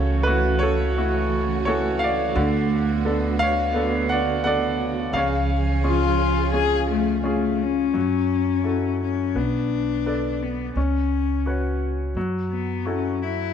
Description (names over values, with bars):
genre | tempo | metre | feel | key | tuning
acoustic folk-pop ballad | 86 BPM | 4/4 | straight | F# minor from 8.0 s | A4 = 440 Hz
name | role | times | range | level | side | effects
bright baby grand piano | melody | 0.0-13.5 s | C#3 to F#5 | -24 LUFS | equal | slapback echo
warm symphonic string section | sustained chords | 0.0-7.9 s | D3 to G#4 | -29 LUFS | right 13 dB | none
upright bass | bass | 0.0-13.5 s | B1 to F#2 | -26 LUFS | right 2 dB | none
warm cello | second line | 5.9-13.5 s | A3 to G#4 | -24 LUFS | left 11 dB | none
room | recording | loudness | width
light reverb, small room reverb | 1960s-style stereo with parts hard left and right | -20 LUFS | side -8 dB against mid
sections
0.0-8.0 A section; 8.0-13.5 B section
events
cello solo 8.0-13.5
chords
0.0 F#m7/C#; 2.4 Bm7/D; 5.1 C#; 8.0 F#m7; 9.4 Bm7; 10.8 C#7sus4; 12.2 F#m7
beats
0.27 0.96 1.66 | 2.36 3.06 3.75 4.45 | 5.14 5.84 6.54 7.25 | 7.96 8.66 9.36 10.06 | 10.76 11.46 12.16 12.86